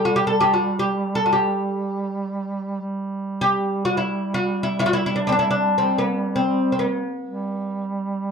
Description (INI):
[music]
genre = Arabic maqam ensemble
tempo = free time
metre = none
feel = none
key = G maqam rast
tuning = A4 = 441 Hz
[part]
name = oud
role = melody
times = 0.0-7.8 s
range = Bb3+50c to A4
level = -20 LUFS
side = left 1 dB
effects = none
[part]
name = warm duduk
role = drone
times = 0.0-8.3 s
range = G3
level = -25 LUFS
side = right 3 dB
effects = none
[sound]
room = moderate studio reverb, RT60 0.5 s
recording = dark, warm production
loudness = -20 LUFS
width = side -6 dB against mid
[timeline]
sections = 0.0-8.3 A section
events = none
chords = none